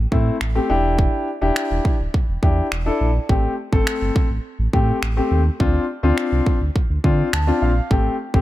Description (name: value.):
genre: dance-pop.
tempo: 104 BPM.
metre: 4/4.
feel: straight.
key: A minor.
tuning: A4 = 440 Hz.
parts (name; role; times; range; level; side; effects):
sub bass with octave; bass; 0.0-8.4 s; D1 to D3; -20 LUFS; equal; sidechain pumping.
warm concert grand piano; accompaniment; 0.1-8.4 s; A3 to A5; -21 LUFS; left 2 dB; none.
house drum kit; drums; 0.1-8.4 s; finger snaps, kick drum; -20 LUFS; equal; none.
room: little or no reverb.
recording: none.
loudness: -17 LUFS.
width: side -15 dB against mid.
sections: 0.0-8.4 A section.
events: grand piano fill 7.0-7.9.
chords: 0.0 Am7; 0.7 Em7; 3.3 Am7; 5.6 Dm7; 7.9 Am7.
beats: 0.41 | 0.99 1.56 2.14 2.72 | 3.29 3.87 4.45 5.02 | 5.60 6.18 6.75 7.33 | 7.91.